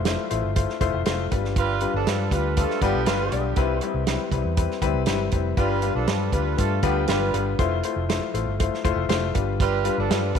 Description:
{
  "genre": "uptempo 1960s-style soul",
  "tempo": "120 BPM",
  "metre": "4/4",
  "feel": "straight",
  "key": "G mixolydian",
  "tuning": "A4 = 438 Hz",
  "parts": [
    { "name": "vintage muted fingered electric bass", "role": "bass", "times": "0.0-10.4 s", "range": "F1 to G2", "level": "-26 LUFS", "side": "right 1 dB", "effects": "none" },
    { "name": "warm upright piano", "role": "accompaniment", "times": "0.1-10.4 s", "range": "G3 to D5", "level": "-25 LUFS", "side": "left 10 dB", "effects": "none" },
    { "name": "warm soul drum kit", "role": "drums", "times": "0.1-10.4 s", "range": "hi-hat, kick drum, snare drum", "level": "-26 LUFS", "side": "right 3 dB", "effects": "none" },
    { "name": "warm horn section", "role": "second line", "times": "1.6-10.4 s", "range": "D3 to B4", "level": "-28 LUFS", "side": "right 10 dB", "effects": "tape echo" }
  ],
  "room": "moderate echo chamber reverb, RT60 1.7 s",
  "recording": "1960s-style stereo with parts hard left and right",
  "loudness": "-21 LUFS",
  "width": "side -7 dB against mid",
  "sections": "0.0-10.4 A section",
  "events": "none",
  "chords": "0.0 Fmaj7; 1.3 G7; 3.6 Cmaj7; 5.6 G7; 7.6 Fmaj7; 9.3 G7",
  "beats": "0.06 0.56 1.06 | 1.57 2.07 2.57 3.07 | 3.57 4.08 4.58 5.08 | 5.58 6.08 6.58 7.09 | 7.59 8.09 8.60 9.10 | 9.60 10.10"
}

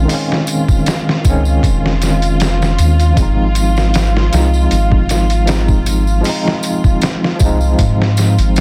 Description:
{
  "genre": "trip hop",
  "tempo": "78 BPM",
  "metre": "4/4",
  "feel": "swing 54% on 16ths",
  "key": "unclear",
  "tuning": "A4 = 439 Hz",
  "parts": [
    { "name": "tine electric piano", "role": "accompaniment", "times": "0.0-8.6 s", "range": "Eb3 to Eb4", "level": "-20 LUFS", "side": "equal", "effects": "tremolo, tape echo" },
    { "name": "dark studio violin section", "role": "sustained chords", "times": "0.0-8.6 s", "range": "F4", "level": "-25 LUFS", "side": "equal", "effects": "none" },
    { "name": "soft dub sub bass", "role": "bass", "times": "0.0-8.6 s", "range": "F1 to Ab2", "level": "-16 LUFS", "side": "equal", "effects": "none" },
    { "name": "trip hop sampler-style drum kit", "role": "drums", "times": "0.1-8.6 s", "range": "hi-hat, kick drum, snare drum", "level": "-18 LUFS", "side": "equal", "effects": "soft clipping on snare" },
    { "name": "tambourine", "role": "percussion", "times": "0.1-8.6 s", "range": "none", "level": "-32 LUFS", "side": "equal", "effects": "none" }
  ],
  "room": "digital ambience",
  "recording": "dense, heavily limited modern master, vinyl crackle",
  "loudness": "-14 LUFS",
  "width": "mono",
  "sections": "0.0-8.6 A section",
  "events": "none",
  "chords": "0.0 Bbm11 (rootless); 3.2 Fm7/Ab",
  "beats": "| 0.10 0.86 1.63 2.40 | 3.17 3.94 4.71 5.48 | 6.25 7.02 7.79 8.56"
}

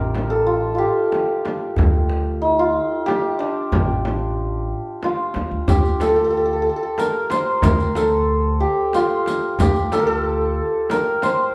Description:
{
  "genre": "Persian modal ensemble",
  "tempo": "92 BPM",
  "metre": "3/4",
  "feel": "straight",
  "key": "unclear",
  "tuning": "A4 = 440 Hz",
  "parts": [
    { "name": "santur", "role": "melody", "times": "0.0-11.5 s", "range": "D4 to C5", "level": "-22 LUFS", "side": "equal", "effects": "none" },
    { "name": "upright bass", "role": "bass", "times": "0.0-10.6 s", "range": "A1 to Eb2+45c", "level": "-25 LUFS", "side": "equal", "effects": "none" },
    { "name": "tombak", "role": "percussion", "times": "0.1-11.4 s", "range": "none", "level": "-28 LUFS", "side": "equal", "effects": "none" },
    { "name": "frame drum", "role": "percussion", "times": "0.2-11.4 s", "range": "none", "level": "-29 LUFS", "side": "equal", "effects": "none" },
    { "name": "riq", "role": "percussion", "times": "5.7-11.4 s", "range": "none", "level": "-36 LUFS", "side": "equal", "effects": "none" }
  ],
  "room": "moderate large studio reverb, RT60 1.1 s",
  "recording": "band playing live in one room",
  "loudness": "-20 LUFS",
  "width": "mono",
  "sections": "0.0-5.7 A section; 5.7-11.5 B section",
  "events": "none",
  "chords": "none",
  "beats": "0.48 1.13 | 1.78 2.43 3.08 | 3.73 4.38 5.03 | 5.68 6.34 6.99 | 7.64 8.29 8.94 | 9.60 10.25 10.90"
}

